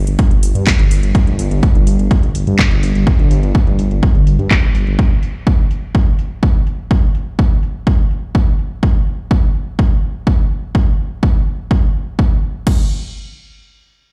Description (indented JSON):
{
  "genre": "melodic techno",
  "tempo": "125 BPM",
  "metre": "4/4",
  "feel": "straight",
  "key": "unclear",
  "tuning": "A4 = 439 Hz",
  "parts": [
    { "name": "dark detuned saw bass", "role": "bass", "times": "0.0-5.0 s", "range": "G1 to G2", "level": "-17 LUFS", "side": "equal", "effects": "sidechain pumping" },
    { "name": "house drum kit", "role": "drums", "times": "0.1-12.8 s", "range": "crash cymbal, handclaps, hi-hat", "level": "-25 LUFS", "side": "equal", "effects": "overdrive, low-pass filter on hats, low-pass filter on toms, low-pass filter on cymbals, low-pass filter on snare, low-pass filter on room" },
    { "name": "electronic kick drum", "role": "drums", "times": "0.2-12.8 s", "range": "none", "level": "-16 LUFS", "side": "equal", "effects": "overdrive" }
  ],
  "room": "little or no reverb",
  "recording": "played on a big sound system in a bare room, large studio reverb",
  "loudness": "-15 LUFS",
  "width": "mono",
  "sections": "0.0-12.7 A section; 12.7-14.1 B section",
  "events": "filter sweep on drum 0.0-12.7",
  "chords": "none"
}